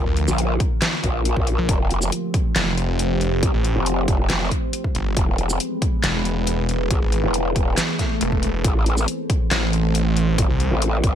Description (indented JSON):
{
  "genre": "heavy wobble dubstep",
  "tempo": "138 BPM",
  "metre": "4/4",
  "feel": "half-time",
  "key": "unclear",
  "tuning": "A4 = 440 Hz",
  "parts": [
    { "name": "evolving wavetable pad", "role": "sustained chords", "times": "0.0-11.2 s", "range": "D3 to C5", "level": "-25 LUFS", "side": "equal", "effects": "phaser, built-in reverb, sidechain pumping" },
    { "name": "growl bass", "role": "bass", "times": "0.0-11.2 s", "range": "E1 to C2", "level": "-21 LUFS", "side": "equal", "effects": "chorus, overdrive" },
    { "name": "snarling distorted saw bass", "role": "bass", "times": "0.1-10.7 s", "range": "E1 to D2", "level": "-22 LUFS", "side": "equal", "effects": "distortion, overdrive" },
    { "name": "dubstep drum kit", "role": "drums", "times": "0.2-11.1 s", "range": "handclaps, hi-hat, shaker, snare drum", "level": "-24 LUFS", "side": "left 1 dB", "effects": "none" },
    { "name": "electronic kick drum", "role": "drums", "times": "0.6-11.1 s", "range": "none", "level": "-22 LUFS", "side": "equal", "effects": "none" },
    { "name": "swell", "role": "sound effects", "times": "7.9-8.6 s", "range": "none", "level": "-27 LUFS", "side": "left 1 dB", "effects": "none" }
  ],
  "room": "little or no reverb",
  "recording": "none",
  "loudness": "-18 LUFS",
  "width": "side -9 dB against mid",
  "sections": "0.0-11.2 A section",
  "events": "swell 7.9-8.6",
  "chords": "0.0 Bb; 1.7 Fadd9; 5.2 E; 8.6 Am",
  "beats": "0.38 0.82 1.25 | 1.69 2.12 2.56 2.99 | 3.43 3.86 4.30 4.73 | 5.17 5.60 6.04 6.47 | 6.91 7.34 7.78 8.21 | 8.64 9.08 9.51 9.95 | 10.38 10.82"
}